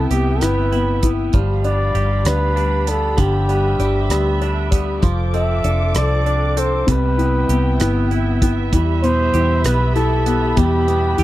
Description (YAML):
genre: six-eight pop ballad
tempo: 65 BPM (dotted quarters)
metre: 6/8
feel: straight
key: unclear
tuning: A4 = 439 Hz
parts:
  - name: breathy flugelhorn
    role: melody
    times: 0.0-11.2 s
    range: G4 to E5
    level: -21 LUFS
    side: right 1 dB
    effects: none
  - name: clear grand piano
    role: accompaniment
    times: 0.0-11.2 s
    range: B2 to A4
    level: -22 LUFS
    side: left 4 dB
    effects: none
  - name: muted studio string section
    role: sustained chords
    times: 0.0-11.2 s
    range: B3 to D6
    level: -27 LUFS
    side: right 1 dB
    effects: none
  - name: twangy electric guitar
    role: arpeggios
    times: 0.0-11.2 s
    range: F3 to A4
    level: -28 LUFS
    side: right 14 dB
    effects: phaser
  - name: vintage muted fingered electric bass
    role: bass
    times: 0.0-11.2 s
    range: F1 to E2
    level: -19 LUFS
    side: equal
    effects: none
  - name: damped 70s drum kit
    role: drums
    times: 0.1-11.2 s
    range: hi-hat, kick drum, rim click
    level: -20 LUFS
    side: equal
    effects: none
room: small room ambience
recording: dry, close 1970s-style studio recording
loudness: -15 LUFS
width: side -15 dB against mid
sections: 0.0-11.2 A section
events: none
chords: 0.0 Cmaj7; 1.3 G7; 5.0 F6; 6.9 Cmaj7; 8.7 Em